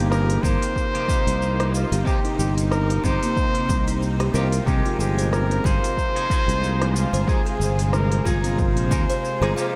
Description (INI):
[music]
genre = organic downtempo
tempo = 92 BPM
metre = 4/4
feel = swing 57% on 16ths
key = C minor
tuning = A4 = 440 Hz
[part]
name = trumpet with bucket mute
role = melody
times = 0.0-9.8 s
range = F4 to C5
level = -29 LUFS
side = equal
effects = analog delay
[part]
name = clean electric guitar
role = accompaniment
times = 0.0-9.8 s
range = C3 to Bb4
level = -33 LUFS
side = equal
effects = lush chorus, sidechain pumping, analog delay
[part]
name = bowed-like drone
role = sustained chords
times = 0.1-9.8 s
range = C3 to F4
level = -34 LUFS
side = equal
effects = built-in reverb, sidechain pumping
[part]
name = buzzing kalimba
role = arpeggios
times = 0.0-9.7 s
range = Bb3 to Ab5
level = -31 LUFS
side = equal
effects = analog delay
[part]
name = sustaining fretless electric bass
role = bass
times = 0.0-9.5 s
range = G1 to Eb2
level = -25 LUFS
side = equal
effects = tube saturation, sidechain pumping
[part]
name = organic electronic drum kit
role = drums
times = 0.1-9.7 s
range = hi-hat, shaker, snare drum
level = -35 LUFS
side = equal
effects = none
[part]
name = electronic kick drum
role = drums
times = 0.4-9.1 s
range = none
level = -26 LUFS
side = equal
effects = overdrive
[sound]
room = moderate huge ambient reverb, RT60 8.5 s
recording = dreamy mix soaked in reverb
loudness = -22 LUFS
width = mono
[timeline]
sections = 0.0-9.8 A section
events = none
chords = 0.0 Cm7; 4.7 Fm